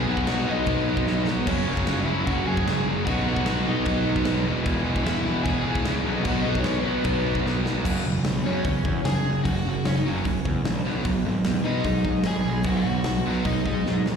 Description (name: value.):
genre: punk rock.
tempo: 150 BPM.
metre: 4/4.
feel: straight.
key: unclear.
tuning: A4 = 440 Hz.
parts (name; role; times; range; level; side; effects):
overdriven semi-hollow guitar; melody; 0.0-14.0 s; B3 to G#5; -29 LUFS; left 2 dB; slapback echo.
distorted electric guitar; riff; 0.0-14.2 s; F#2 to E4; -31 LUFS; left 13 dB; distortion.
high-gain distorted guitar; riff; 0.0-7.7 s; E2 to B3; -33 LUFS; left 3 dB; distortion, slapback echo.
sludgy distorted guitar; riff; 0.0-14.2 s; E2 to B3; -27 LUFS; right 8 dB; overdrive, slapback echo.
fuzz picked electric bass; bass; 0.0-14.2 s; E1 to B2; -28 LUFS; left 1 dB; overdrive.
big rock drum kit; drums; 0.2-14.2 s; crash cymbal, hi-hat, kick drum, snare drum; -29 LUFS; left 1 dB; none.
room: little or no reverb.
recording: live gig heard through the venue's PA, recital hall reverb.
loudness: -22 LUFS.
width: side -6 dB against mid.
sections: 0.0-7.9 A section; 7.9-14.2 B section.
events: drum fill 1.1-1.5, 7.5-7.9, 13.9.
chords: 0.0 B; 1.5 F#; 3.1 B; 4.5 E; 6.1 B; 7.9 F#5; 10.9 B.